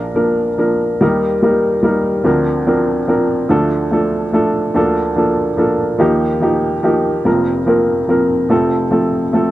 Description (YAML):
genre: folk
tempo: 48 BPM (dotted quarters)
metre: 6/8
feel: straight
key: Bb major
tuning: A4 = 440 Hz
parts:
  - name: warm upright piano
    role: solo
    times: 0.0-9.5 s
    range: F1 to Bb4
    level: -13 LUFS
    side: equal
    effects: none
room: small room ambience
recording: dry, close 1970s-style studio recording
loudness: -13 LUFS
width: side -15 dB against mid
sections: 0.0-9.5 A section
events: none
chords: 0.0 Bb; 1.0 Eb; 2.3 Bbadd9/D; 3.5 Dm; 4.8 Bbmaj7/D; 6.0 Ebadd9; 7.3 Fsus4; 8.5 F